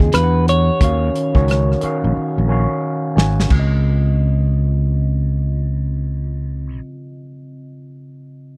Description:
R&B, neo-soul; 89 BPM; 4/4; swing 62% on 16ths; Db major; A4 = 440 Hz
clean electric guitar; melody; 0.0-2.8 s; Ab4 to Db5; -23 LUFS; equal; low-pass filter
overdriven tine electric piano; accompaniment; 0.0-8.6 s; Db3 to Ab5; -26 LUFS; equal; phaser, low-pass filter
fretless electric bass; bass; 0.0-6.8 s; Ab1 to E2; -19 LUFS; equal
warm soul drum kit; drums; 0.0-3.7 s; crash cymbal, hi-hat, kick drum, rim click, snare drum; -20 LUFS; equal
little or no reverb; -18 LUFS; mono
0.0-3.5 A section; 3.5-6.2 B section
filter sweep 0.0-3.5; drum fill 2.2-3.5
0.1 Em9; 0.8 Ebm9; 3.5 Dbmaj9

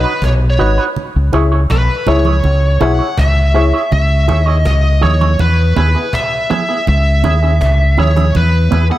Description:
roots reggae; 81 BPM; 4/4; straight; C# minor; A4 = 440 Hz
bluesy overdriven lead guitar; melody; 0.0-9.0 s; B4 to F#5; -18 LUFS; equal; distortion, tape echo
electric guitar with an envelope filter; accompaniment; 0.0-9.0 s; B3 to C#5; -21 LUFS; right 5 dB; tape echo
dark upright piano; stabs; 0.0-3.7 s; D#4 to E5; -19 LUFS; left 4 dB
deep dub fingered electric bass; bass; 0.0-8.9 s; G#1 to E2; -12 LUFS; equal
cajon; drums; 0.0-9.0 s; -24 LUFS; equal
congas; percussion; 1.0-8.9 s; -23 LUFS; right 5 dB
small room ambience; -10 LUFS; side -14 dB against mid
0.0-3.9 A section; 3.9-9.0 B section
lead electric guitar solo 0.0-3.9
0.0 B; 1.0 C#m; 5.4 E; 6.9 C#m; 8.3 E

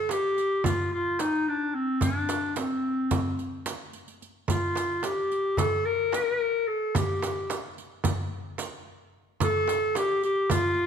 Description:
Turkish makam ensemble; 219 BPM (eighths); 9/8; straight; G makam ussak; A4 = 440 Hz
warm clarinet; melody; 0.0-10.9 s; C4 to Bb4; -26 LUFS; left 1 dB
darbuka; percussion; 0.1-10.6 s; -32 LUFS; left 2 dB
frame drum; percussion; 0.1-10.6 s; -33 LUFS; right 6 dB
riq; percussion; 0.1-10.6 s; -38 LUFS; right 7 dB
moderate recital hall reverb, RT60 1.5 s; -25 LUFS; side -7 dB against mid
0.0-10.9 A section

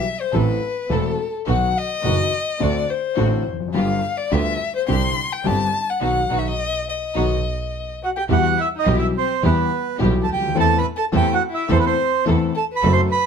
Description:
tango; 106 BPM; 4/4; rubato; E harmonic minor; A4 = 440 Hz
warm violin; second line; 0.0-13.3 s; B3 to C6; -24 LUFS; left 6 dB
warm concert grand piano; accompaniment; 0.3-13.1 s; E1 to A4; -23 LUFS; left 5 dB
warm studio string section; stabs; 0.3-13.1 s; B3 to A4; -30 LUFS; right 1 dB
clear double bass; bass; 0.3-13.1 s; E1 to E2; -22 LUFS; right 4 dB
bandoneon; melody; 8.0-13.3 s; B4 to C6; -20 LUFS; right 7 dB
light reverb; -18 LUFS; side -6 dB against mid
0.0-8.3 A section; 8.3-13.3 B section
violin solo 0.0-8.3; band accent 6.0-8.3
0.3 Am; 1.5 B; 2.6 D7; 3.7 G7; 4.9 Csus2; 6.0 B; 8.3 Em; 10.6 Am/E

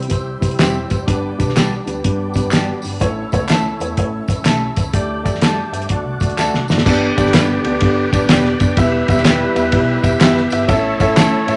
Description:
uptempo 1960s-style soul; 125 BPM; 4/4; swing 65% on 8ths; G major; A4 = 440 Hz
dark upright piano; accompaniment; 0.0-11.6 s; G3 to A5; -22 LUFS; equal
overdriven tonewheel organ; sustained chords; 0.0-11.6 s; G3 to E5; -28 LUFS; equal; slow rotary speaker, chorus vibrato
vintage muted fingered electric bass; bass; 0.0-11.5 s; E1 to A2; -28 LUFS; equal
cloth-damped thuddy drum kit; drums; 0.0-11.6 s; crash cymbal, hi-hat, kick drum, ride cymbal, snare drum; -19 LUFS; equal
tambourine and handclaps; percussion; 0.1-11.6 s; -29 LUFS; equal
clean electric guitar; stabs; 0.6-11.3 s; G3 to B4; -26 LUFS; equal; spring reverb
mellow horn section; second line; 6.9-11.6 s; D3 to C#5; -24 LUFS; equal
moderate large studio reverb, RT60 0.8 s; nothing above 11.0 kHz; -16 LUFS; mono
0.0-6.9 A section; 6.9-11.6 B section
upright piano fill 5.4-6.9; drum fill 6.4-6.9
0.0 C; 1.1 G; 3.0 A; 4.9 Dsus4; 5.9 D; 6.9 G; 8.8 Em; 10.7 A

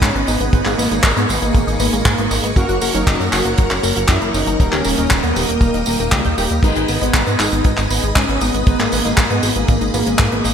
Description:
italo disco; 118 BPM; 4/4; straight; G# minor; A4 = 440 Hz
wide unison lead; melody; 0.0-10.5 s; A#3 to F#4; -21 LUFS; equal; ping-pong delay
string machine, full ensemble; sustained chords; 0.0-10.5 s; A#4 to D#6; -25 LUFS; equal; phaser, ensemble chorus
analog synth brass; stabs; 0.0-10.5 s; G#2 to B4; -25 LUFS; right 4 dB; chorus
chorused synth bass; bass; 0.0-10.5 s; D#1 to G#2; -21 LUFS; equal
damped 70s drum kit; drums; 0.0-10.5 s; crash cymbal, handclaps, hi-hat, tambourine; -20 LUFS; right 1 dB; gated reverb
kick drum; drums; 0.0-10.3 s; -15 LUFS; equal
analog pluck; arpeggios; 0.2-10.5 s; F#3 to G5; -26 LUFS; left 4 dB; chorus, ping-pong delay
moderate lush hall reverb, RT60 2.3 s; bright 1980s-style digital production; -14 LUFS; side -8 dB against mid
0.0-10.5 A section
0.0 G#m; 2.6 F#; 4.6 D#; 6.6 G#m

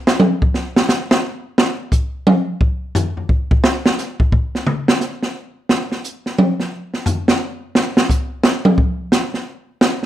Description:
jazz; 175 BPM; 3/4; swing 63% on 8ths
open jazz drum kit; drums; 0.1-10.1 s; hi-hat, kick drum, snare drum, toms; -15 LUFS; equal
moderate studio reverb, RT60 0.7 s; -15 LUFS; side -12 dB against mid
0.0-3.6 A section; 3.6-10.1 A section
drum solo 0.0-3.6, 3.6-10.1

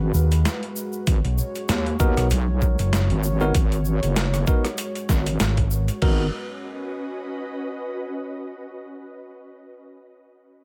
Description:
glitch hop; 97 BPM; 4/4; swing 56% on 16ths; G# minor; A4 = 440 Hz
warm analog pad; sustained chords; 0.0-6.3 s; G#3 to C#5; -35 LUFS; equal; chorus, sidechain pumping
wobble bass; bass; 0.0-6.3 s; F#1 to D#2; -25 LUFS; equal; chorus
overdriven fingered electric bass; bass; 0.1-5.9 s; F#1 to D#2; -22 LUFS; equal
egg shaker; percussion; 0.1-6.0 s; -39 LUFS; equal
boom bap sampler-style drum kit; drums; 0.3-6.2 s; crash cymbal, hi-hat, rim click, snare drum; -30 LUFS; equal; overdrive
electronic kick drum; drums; 1.1-6.2 s; -23 LUFS; equal; overdrive
tine electric piano; stabs; 2.0-6.3 s; B3 to A#4; -31 LUFS; equal; sidechain pumping, tape echo
ethereal airy pad; texture; 6.5-8.5 s; C#4 to D#5; -35 LUFS; equal; ensemble chorus, built-in reverb, sidechain pumping
digital ambience; -23 LUFS; mono
0.0-6.0 A section; 6.0-8.5 B section
drop 0.0-6.0
0.0 G#m7

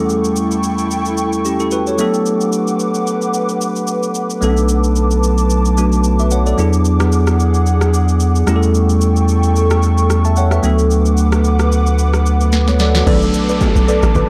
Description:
amapiano; 111 BPM; 4/4; swing 55% on 16ths; B minor; A4 = 440 Hz
bell-like tine electric piano; accompaniment; 0.0-14.3 s; E2 to A5; -19 LUFS; equal; subtle chorus
airy breathy pad; sustained chords; 0.0-14.3 s; E4 to D6; -24 LUFS; equal; chorus
afro-pop drum kit; drums; 0.1-14.3 s; crash cymbal, kick drum, rim click, shaker, snare drum; -25 LUFS; equal
saturated sub bass; bass; 4.4-13.0 s; B1 to E2; -16 LUFS; equal
swell and downlifter; sound effects; 12.1-14.3 s; -31 LUFS; equal
deep mellow chord stab; stabs; 13.1-14.3 s; A4 to D5; -22 LUFS; equal; chorus, tape echo
tight log drum bass; bass; 13.1-14.3 s; A1 to B1; -18 LUFS; equal
congas and bongos; percussion; 13.1-14.3 s; -26 LUFS; equal
light reverb; dark, warm production; -15 LUFS; mono
0.0-13.1 A section; 13.1-14.3 B section
drum fill 12.5-13.1
0.0 A7/E; 2.0 D6; 4.4 Bm7; 6.6 E9; 8.5 A7/E; 10.6 D6; 13.1 Bm7

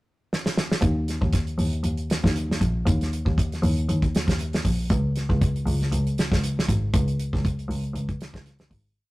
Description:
afrobeat; 118 BPM; 4/4; swing 54% on 16ths; A4 = 440 Hz
damped 70s drum kit; drums; 0.3-8.8 s; hi-hat, kick drum, snare drum; -24 LUFS; equal
rich double bass; bass; 0.8-8.8 s; Ab1 to Eb2; -24 LUFS; equal
light reverb; rough rehearsal-room recording, tube saturation; -22 LUFS; side -20 dB against mid
0.0-0.8 pickup bar; 0.8-9.0 groove
drum fill 0.3-0.8; fade-out 6.9-9.0

